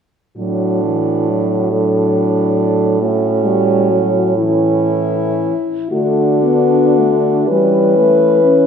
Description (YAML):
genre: classical, lyrical piece for horn quartet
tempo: 35-47 BPM (dotted quarters)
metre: 6/8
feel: rubato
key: D major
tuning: A4 = 440 Hz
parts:
  - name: mellow French horn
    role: melody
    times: 0.4-8.7 s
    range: E4 to B4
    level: -16 LUFS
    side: left 5 dB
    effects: none
  - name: warm French horn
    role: second line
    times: 0.4-8.7 s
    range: C#4 to D4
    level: -19 LUFS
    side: right 8 dB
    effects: none
  - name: mellow French horn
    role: accompaniment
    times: 0.4-8.7 s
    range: E3 to C#4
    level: -18 LUFS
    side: right 1 dB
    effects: none
  - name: warm French horn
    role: bass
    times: 0.4-8.7 s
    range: A2 to E3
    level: -19 LUFS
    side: right 1 dB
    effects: none
room: moderate concert hall reverb, RT60 1.8 s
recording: minimal, uncompressed stereo recording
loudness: -12 LUFS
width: side -7 dB against mid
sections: 0.4-5.9 A section; 5.9-8.7 B section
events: none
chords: 0.4 D/A; 3.0 A6; 5.9 D; 7.5 Em6